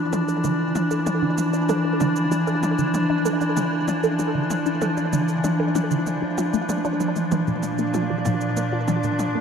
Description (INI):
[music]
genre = ambient, sequencer-driven space music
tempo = 96 BPM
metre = 4/4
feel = straight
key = D minor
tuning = A4 = 440 Hz
[part]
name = evolving wavetable pad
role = sustained chords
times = 0.0-9.4 s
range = Bb2 to D4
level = -22 LUFS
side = equal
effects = chorus, built-in reverb
[part]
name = resonant blip pluck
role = riff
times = 0.0-9.4 s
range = Bb2 to A4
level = -27 LUFS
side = right 1 dB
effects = phaser, analog chorus, tape echo
[part]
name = wind-like tuned noise texture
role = texture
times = 3.8-9.4 s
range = D4 to D5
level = -42 LUFS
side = right 2 dB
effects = none
[part]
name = electronic toms and shaker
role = percussion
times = 0.1-9.3 s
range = none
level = -30 LUFS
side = equal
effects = tape echo
[sound]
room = wet lush hall reverb, RT60 2.7 s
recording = none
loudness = -20 LUFS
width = side -7 dB against mid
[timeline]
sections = 0.0-9.4 A section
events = none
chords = 0.0 Dmadd9; 7.3 Bb